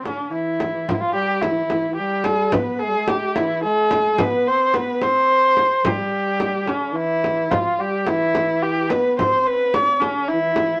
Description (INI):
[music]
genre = Persian modal ensemble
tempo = 72 BPM (dotted quarters)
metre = 6/8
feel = straight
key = unclear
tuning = A4 = 440 Hz
[part]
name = breathy tenor saxophone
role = second line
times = 0.0-10.8 s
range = Db3+39c to C4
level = -28 LUFS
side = equal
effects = none
[part]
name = rich kamancheh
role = melody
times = 0.1-10.8 s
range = Db4+36c to Db5+49c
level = -21 LUFS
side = equal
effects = none
[part]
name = frame drum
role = percussion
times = 0.1-10.7 s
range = none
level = -27 LUFS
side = equal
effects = none
[sound]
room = moderate studio reverb, RT60 0.6 s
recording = none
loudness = -20 LUFS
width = mono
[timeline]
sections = 0.9-10.8 A section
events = none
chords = none